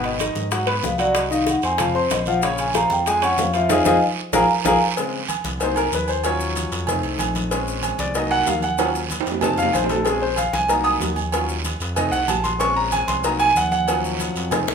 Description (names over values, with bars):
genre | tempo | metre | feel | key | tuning
Afro-Cuban jazz | 188 BPM | 4/4 | straight | unclear | A4 = 440 Hz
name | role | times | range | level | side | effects
vibraphone with medium mallets | melody | 0.0-4.8 s | C5 to Bb5 | -20 LUFS | equal | none
clear concert grand piano | accompaniment | 0.0-14.7 s | Cb3 to Eb6 | -22 LUFS | left 2 dB | none
smooth synth bass | bass | 0.0-14.7 s | Ab1 to Ab2 | -29 LUFS | equal | none
bongos and cowbell | percussion | 0.0-14.7 s | none | -29 LUFS | left 6 dB | none
congas | percussion | 0.0-14.7 s | none | -31 LUFS | left 2 dB | none
timbales and agogo bells | percussion | 0.0-14.7 s | none | -26 LUFS | right 9 dB | none
guiro | percussion | 0.2-14.7 s | none | -32 LUFS | right 7 dB | none
maracas | percussion | 0.2-14.7 s | none | -34 LUFS | left 6 dB | none
room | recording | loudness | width
moderate large studio reverb, RT60 1.1 s | minimal, uncompressed stereo recording | -18 LUFS | side -6 dB against mid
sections
0.0-5.0 A section; 5.0-14.7 A section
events
vibraphone solo 0.0-5.0; band accent 3.7-5.0; grand piano solo 5.0-14.7; drum fill 8.8-10.1, 14.5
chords
0.0 Abm7; 1.2 Cdim; 1.8 F5; 2.4 Bbm7; 3.7 Fm7; 4.3 Bb5; 5.0 Abadd11; 5.6 Cm7b5; 6.2 Ebm7; 6.9 F7; 7.5 Bbm7; 8.2 Cm7b5; 8.8 Ebm7; 9.4 F7; 10.1 Bbm7; 10.7 Cm7b5; 11.3 Ebm7; 12.0 F7; 12.6 Bbm7; 13.2 Cm7b5; 13.9 Ebm7